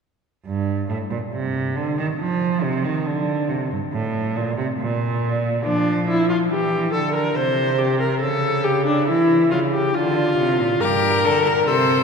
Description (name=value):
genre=classical, baroque-style fugue for string quartet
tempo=70 BPM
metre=3/4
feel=straight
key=G minor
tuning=A4 = 443 Hz
part: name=clear cello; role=bass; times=0.5-12.0 s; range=G2 to F3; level=-22 LUFS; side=right 3 dB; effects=none
part: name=clear viola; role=accompaniment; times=5.6-12.0 s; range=D4 to C5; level=-19 LUFS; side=left 2 dB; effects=none
part: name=clear violin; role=second line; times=10.8-12.0 s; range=G4 to C5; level=-19 LUFS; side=left 6 dB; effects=none
room=wet cathedral reverb, RT60 4.5 s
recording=recorded in a church or concert hall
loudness=-18 LUFS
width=side -5 dB against mid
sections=0.5-12.0 A section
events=none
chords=0.5 G5; 2.2 F5; 3.1 D5; 4.8 N.C.; 5.6 Dm/F; 7.4 C5; 8.2 A7/C#; 9.9 Dm; 10.8 Gm